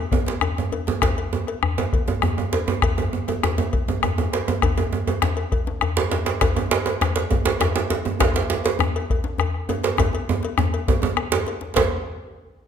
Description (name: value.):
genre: west african traditional, West African drum ensemble.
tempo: 134 BPM (dotted quarters).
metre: 12/8.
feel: straight.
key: none.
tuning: none.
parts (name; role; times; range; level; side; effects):
bombo; percussion; 0.1-11.9 s; none; -24 LUFS; left 2 dB; none.
cowbell; percussion; 0.1-11.9 s; none; -31 LUFS; left 6 dB; none.
djembe; percussion; 0.1-11.9 s; none; -23 LUFS; right 5 dB; none.
djembe; percussion; 0.3-11.9 s; none; -27 LUFS; left 4 dB; none.
room: wet recital hall reverb, RT60 1.3 s.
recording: none.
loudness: -20 LUFS.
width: side -8 dB against mid.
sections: 0.0-11.8 A section.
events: drum fill 4.2-4.6, 10.0-11.8.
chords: none.